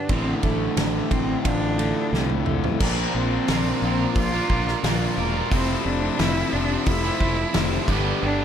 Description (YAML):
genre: quiet-loud alternative rock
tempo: 89 BPM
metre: 4/4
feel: straight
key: unclear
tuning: A4 = 440 Hz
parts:
  - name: rich cello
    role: melody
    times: 0.0-8.4 s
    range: A3 to F4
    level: -28 LUFS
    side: right 1 dB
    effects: slapback echo
  - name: electric guitar through a small old amp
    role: arpeggios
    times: 0.0-2.8 s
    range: D2 to F4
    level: -30 LUFS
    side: right 4 dB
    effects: slapback echo
  - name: overdriven semi-hollow guitar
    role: riff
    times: 0.0-8.4 s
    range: D2 to Bb4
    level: -28 LUFS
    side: right 13 dB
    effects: none
  - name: distorted electric guitar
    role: riff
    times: 0.1-8.4 s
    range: D2 to Bb4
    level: -27 LUFS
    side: left 12 dB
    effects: distortion
  - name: fuzz fingered electric bass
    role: bass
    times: 0.1-8.4 s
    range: E1 to C2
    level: -27 LUFS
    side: equal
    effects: overdrive
  - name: loose indie drum kit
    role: drums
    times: 0.1-8.0 s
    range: crash cymbal, hi-hat, kick drum, ride cymbal, snare drum, toms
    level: -26 LUFS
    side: equal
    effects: none
  - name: clear studio string section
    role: sustained chords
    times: 2.8-8.4 s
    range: A4 to E6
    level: -38 LUFS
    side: left 3 dB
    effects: none
room: little or no reverb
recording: none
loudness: -20 LUFS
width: side -8 dB against mid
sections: 0.0-2.8 A section; 2.8-8.4 B section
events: drum fill 2.1-2.8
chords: 0.1 Dm7/A; 2.8 Bbadd9; 5.5 Fmaj7; 7.9 G